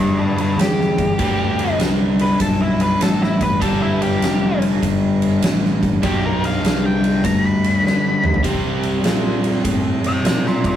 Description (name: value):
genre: blues rock power trio and southern rock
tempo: 99 BPM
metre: 4/4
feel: swing 66% on 8ths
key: G mixolydian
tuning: A4 = 440 Hz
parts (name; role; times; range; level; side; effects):
- octave-fuzz lead guitar; melody; 0.0-10.8 s; E4 to B5; -22 LUFS; left 1 dB; distortion
- overdriven electric guitar; riff; 0.0-10.8 s; G2 to C4; -19 LUFS; left 1 dB; none
- fuzz fingered electric bass; bass; 0.0-10.8 s; F1 to D3; -23 LUFS; right 1 dB; overdrive
- oversized low-tuned drum kit; drums; 0.4-10.7 s; kick drum, ride cymbal, snare drum, toms; -21 LUFS; equal; none
room: light reverb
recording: rough rehearsal-room recording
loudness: -15 LUFS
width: side -10 dB against mid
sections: 0.0-10.8 A section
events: lead electric guitar solo 0.0-10.8; drum fill 7.8-8.4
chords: 0.0 G; 8.4 C7(no3)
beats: 0.58 | 1.19 1.79 2.40 3.01 | 3.61 4.22 4.82 5.42 | 6.03 6.63 7.23 7.83 | 8.44 9.04 9.64 10.24